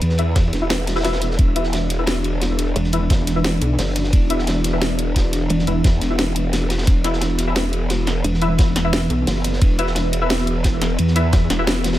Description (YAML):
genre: dark technical drum and bass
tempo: 175 BPM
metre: 4/4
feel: straight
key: unclear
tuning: A4 = 441 Hz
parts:
  - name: dark analog pad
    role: sustained chords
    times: 0.0-12.0 s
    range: E3 to B4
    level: -26 LUFS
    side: right 1 dB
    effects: chorus, vintage 12-bit sampler grit, sidechain pumping
  - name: growl bass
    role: bass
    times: 0.0-12.0 s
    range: E1 to E2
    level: -21 LUFS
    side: equal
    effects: chorus, overdrive, sidechain pumping
  - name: crunchy breakbeat drum kit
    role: drums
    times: 0.0-12.0 s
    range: hi-hat, ride cymbal, snare drum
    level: -30 LUFS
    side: equal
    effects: high-pass filter on cymbals, high-pass filter on hats, high-pass filter on snare, high-pass filter on room
  - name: drum and bass drum kit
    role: drums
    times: 0.0-11.9 s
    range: hi-hat, snare drum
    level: -24 LUFS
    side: equal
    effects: none
  - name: orchestra-hit-like synth stab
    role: stabs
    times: 0.2-11.7 s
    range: E4 to E5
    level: -26 LUFS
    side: left 2 dB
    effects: built-in reverb, dub echo
  - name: pulsing pluck wobble bass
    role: bass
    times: 0.4-0.5, 2.8-5.8, 8.2-9.3, 11.3-11.5 s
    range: E1 to E2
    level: -19 LUFS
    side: equal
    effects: chorus
  - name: electronic kick drum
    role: drums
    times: 0.4-11.4 s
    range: none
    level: -16 LUFS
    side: equal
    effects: none
room: studio reverb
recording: none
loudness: -16 LUFS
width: side -14 dB against mid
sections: 0.0-12.0 A section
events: filter sweep on synth stab 0.0-12.0; break 6.2-6.9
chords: 0.0 E5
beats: | 0.02 0.36 0.70 1.04 | 1.39 1.73 2.07 2.42 | 2.76 3.10 3.44 3.79 | 4.13 4.47 4.82 5.16 | 5.50 5.84 6.19 6.53 | 6.87 7.22 7.56 7.90 | 8.24 8.59 8.93 9.27 | 9.62 9.96 10.30 10.64 | 10.99 11.33 11.67